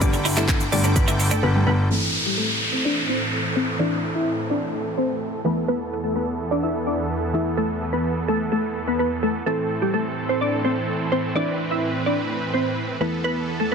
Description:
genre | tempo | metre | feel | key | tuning
dance-pop | 127 BPM | 4/4 | straight | A minor | A4 = 438 Hz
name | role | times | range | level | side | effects
glassy wavetable pluck | melody | 0.0-13.7 s | G3 to E5 | -24 LUFS | left 1 dB | chorus, sidechain pumping, low-pass filter, tape echo
deep mellow chord stab | accompaniment | 0.0-13.7 s | E3 to A4 | -29 LUFS | left 1 dB | chorus, sidechain pumping, low-pass filter
supersaw chords | sustained chords | 0.0-13.7 s | E2 to D6 | -27 LUFS | right 2 dB | sidechain pumping, low-pass filter
warm grand piano | bass | 0.0-1.9 s | G1 | -21 LUFS | equal | sidechain pumping
house drum kit | drums | 0.0-1.4 s | handclaps, hi-hat, kick drum, shaker | -22 LUFS | equal | none
tube shaker | percussion | 0.0-1.4 s | none | -37 LUFS | left 11 dB | none
twelve-string electric guitar | riff | 0.1-1.4 s | B3 to E4 | -28 LUFS | right 3 dB | ensemble chorus
downlifter | sound effects | 1.9-5.7 s | none | -26 LUFS | equal | none
room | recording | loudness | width
light reverb | dense, heavily limited modern master | -20 LUFS | side -6 dB against mid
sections
0.0-1.9 A section; 1.9-13.7 B section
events
drop 0.0-1.9; silent gap 1.4-1.9; filter sweep 1.9-13.7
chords
0.0 Gadd9; 1.9 Am; 5.4 Esus4; 9.5 Am; 13.0 Esus4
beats
| 0.01 0.49 0.96 1.43 | 1.90 2.38 2.85 3.32 | 3.79 4.27 4.74 5.21 | 5.68 6.16 6.63 7.10 | 7.57 8.05 8.52 8.99 | 9.46 9.94 10.41 10.88 | 11.35 11.82 12.30 12.77 | 13.24 13.71

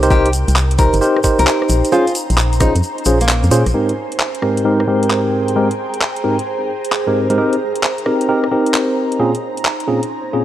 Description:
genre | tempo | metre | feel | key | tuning
UK garage, two-step garage | 132 BPM | 4/4 | swing 66% on 16ths | Ab major | A4 = 441 Hz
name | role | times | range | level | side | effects
nylon-string guitar | melody | 0.0-3.7 s | Bb3 to Bb4 | -21 LUFS | equal | analog delay
tine electric piano | stabs | 0.0-10.4 s | Ab2 to C5 | -16 LUFS | equal | medium stereo tremolo, low-pass filter, analog delay
organ-like FM bass | bass | 0.0-3.7 s | G1 to Bb2 | -15 LUFS | equal | none
garage drum kit | drums | 0.0-10.1 s | handclaps, hi-hat, rim click | -20 LUFS | equal | none
tube shaker | percussion | 0.0-3.7 s | none | -27 LUFS | left 2 dB | none
ethereal airy pad | texture | 0.0-10.4 s | C4 to Bb5 | -24 LUFS | right 2 dB | ensemble chorus, built-in reverb, phaser, sidechain pumping
electronic kick drum | drums | 0.1-2.7 s | none | -16 LUFS | equal | none
room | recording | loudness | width
moderate lush hall reverb, RT60 2.1 s | dry, gritty hardware recording | -13 LUFS | side -12 dB against mid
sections
0.0-3.7 A section; 3.7-10.4 B section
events
kick drops out 2.8-3.7; filter sweep on tine electric piano 3.7-10.4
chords
0.1 Cm7; 1.9 Bbm9; 3.7 Abmaj9; 7.4 Cm7; 9.2 Bbm9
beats
| 0.10 0.56 1.01 1.47 | 1.92 2.38 2.83 3.29 | 3.74 4.20 4.65 5.11 | 5.56 6.01 6.47 6.92 | 7.38 7.83 8.29 8.74 | 9.20 9.65 10.11

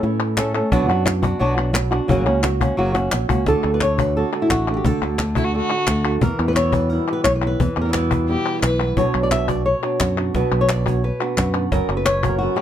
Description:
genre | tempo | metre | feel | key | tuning
flamenco | 175 BPM | 4/4 | straight | unclear | A4 = 439 Hz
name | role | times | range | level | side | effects
flamenco guitar | melody | 0.0-12.6 s | F#2 to E5 | -21 LUFS | left 1 dB | plate reverb
flamenco guitar | stabs | 0.0-12.6 s | B2 to F#4 | -26 LUFS | right 5 dB | none
fingered electric bass | bass | 0.0-12.5 s | F#1 to A2 | -22 LUFS | equal | none
cajon | percussion | 0.0-12.6 s | none | -24 LUFS | left 2 dB | none
palmas hand claps | percussion | 0.2-12.6 s | none | -26 LUFS | left 4 dB | none
dark violin | second line | 5.4-6.1, 8.3-8.9 s | E4 to B4 | -25 LUFS | left 2 dB | none
room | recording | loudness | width
light reverb | none | -17 LUFS | side -10 dB against mid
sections
0.0-3.5 A section; 3.5-12.6 B section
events
drum fill 3.0-3.5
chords
0.0 A; 0.7 Bm; 2.1 F#; 3.5 D; 6.2 Em; 9.0 Bm; 11.7 F#sus4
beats
0.03 0.37 | 0.72 1.06 1.41 1.75 | 2.09 2.44 2.78 3.12 | 3.47 3.81 4.16 4.50 | 4.85 5.19 5.54 5.88 | 6.22 6.57 6.91 7.26 | 7.60 7.94 8.29 8.63 | 8.97 9.32 9.66 10.00 | 10.35 10.69 11.03 11.38 | 11.72 12.06 12.41

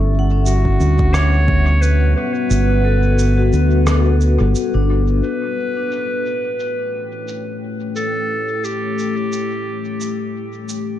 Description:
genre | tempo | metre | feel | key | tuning
ambient dub | 88 BPM | 4/4 | swing 56% on 16ths | A mixolydian | A4 = 440 Hz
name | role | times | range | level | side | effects
deep dark ambient pad | sustained chords | 0.0-11.0 s | G3 to G5 | -23 LUFS | left 2 dB | chorus, built-in reverb
vibraphone with medium hard mallets | arpeggios | 0.0-5.4 s | C#4 to F#5 | -25 LUFS | left 6 dB | tape echo
fingered electric bass | bass | 0.0-5.2 s | G1 to D2 | -14 LUFS | equal | none
clear clarinet | melody | 0.5-10.3 s | F#4 to C#5 | -23 LUFS | equal | dub echo
electronic shaker and rim click | drums | 0.5-10.8 s | none | -28 LUFS | right 1 dB | low-pass filter on perc, low-pass filter on snare, low-pass filter on room, dub echo
electronic kick drum | drums | 0.7-1.6 s | none | -20 LUFS | equal | none
room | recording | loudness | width
digital ambience | nothing above 10.7 kHz | -15 LUFS | side -12 dB against mid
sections
0.0-5.2 A section; 5.2-11.0 B section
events
kick drops out 2.5-5.2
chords
0.0 Gmaj7; 5.2 A7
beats
0.46 1.14 1.82 | 2.50 3.19 3.87 4.55 | 5.23 5.91 6.60 7.28 | 7.96 8.64 9.32 10.01 | 10.69

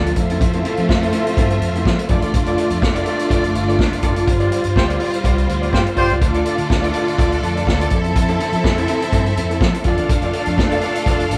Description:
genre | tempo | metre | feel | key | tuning
disco | 124 BPM | 4/4 | straight | D minor | A4 = 440 Hz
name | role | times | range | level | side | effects
rich studio string section | second line | 0.0-11.4 s | F3 to F5 | -26 LUFS | equal | none
electric guitar at the edge of break-up | accompaniment | 0.0-11.4 s | C4 to D5 | -26 LUFS | equal | none
rich studio string section | sustained chords | 0.0-11.4 s | D3 to E5 | -26 LUFS | equal | none
fingered electric bass | bass | 0.0-11.4 s | F1 to F3 | -24 LUFS | equal | none
vintage drum kit | drums | 0.1-11.4 s | hi-hat, kick drum, snare drum | -22 LUFS | equal | none
mellow horn section | stabs | 4.8-6.1 s | F4 to C5 | -23 LUFS | equal | none
room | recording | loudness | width
moderate large studio reverb, RT60 0.9 s | band playing live in one room | -17 LUFS | mono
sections
0.0-11.4 A section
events
band accent 4.3-6.2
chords
0.2 Fmaj7; 2.1 Dm/F; 4.3 G7sus4; 6.2 Dm; 7.9 Fmaj7; 9.9 Dm/F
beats
| 0.41 0.89 1.37 1.86 | 2.34 2.83 3.31 3.79 | 4.28 4.76 5.25 5.73 | 6.22 6.70 7.19 7.67 | 8.15 8.64 9.12 9.61 | 10.10 10.58 11.07

